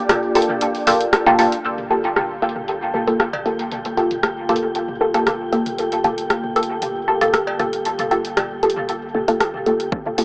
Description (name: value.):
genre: dub techno.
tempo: 116 BPM.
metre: 4/4.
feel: straight.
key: G minor.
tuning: A4 = 441 Hz.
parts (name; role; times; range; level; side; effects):
deep dark ambient pad; sustained chords; 0.0-9.9 s; Bb3 to D5; -28 LUFS; equal; chorus, built-in reverb, sidechain pumping.
filtered dub chord stab; stabs; 0.0-10.2 s; Bb3 to A4; -18 LUFS; equal; phaser, sidechain pumping, dub echo.
wind-like tuned noise texture; texture; 0.0-10.2 s; C4 to G5; -30 LUFS; equal; built-in reverb, sidechain pumping.
punchy analog drum machine; drums; 0.1-10.2 s; hi-hat, rim click; -21 LUFS; equal; overdrive, low-pass filter on hats, low-pass filter on snare, dub echo.
electronic toms and cowbell; percussion; 0.1-10.2 s; none; -32 LUFS; equal; sidechain pumping on toms, sidechain pumping on perc, dub echo.
soft dub sub bass; bass; 1.6-10.2 s; G1; -42 LUFS; equal; transformer saturation, sidechain pumping.
electronic kick drum; drums; 9.9-10.0 s; none; -23 LUFS; equal; overdrive.
room: light reverb.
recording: dry, gritty hardware recording, small speaker sound.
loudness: -17 LUFS.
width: side -26 dB against mid.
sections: 0.0-1.6 A section; 1.6-9.9 B section.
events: break 0.0-1.6; band accent 1.1; filter sweep on drum 1.6-9.9.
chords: 0.0 Gm9.